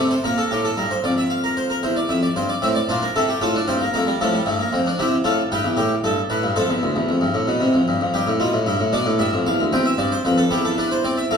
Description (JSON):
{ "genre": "classical, baroque-style 3-part fugue for harpsichord", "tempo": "76 BPM (dotted quarters)", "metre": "12/8", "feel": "straight", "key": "F major", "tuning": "A4 = 440 Hz", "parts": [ { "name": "harpsichord", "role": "solo", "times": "0.0-11.4 s", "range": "D2 to G5", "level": "-18 LUFS", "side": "equal", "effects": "none" } ], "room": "wet recital hall reverb, RT60 1.4 s", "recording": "recorded in a church or concert hall", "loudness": "-18 LUFS", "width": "side -6 dB against mid", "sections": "0.0-11.4 A section", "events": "none", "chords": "0.2 Bb; 1.8 C/E; 3.4 F; 5.0 C; 6.6 F; 9.7 C/E" }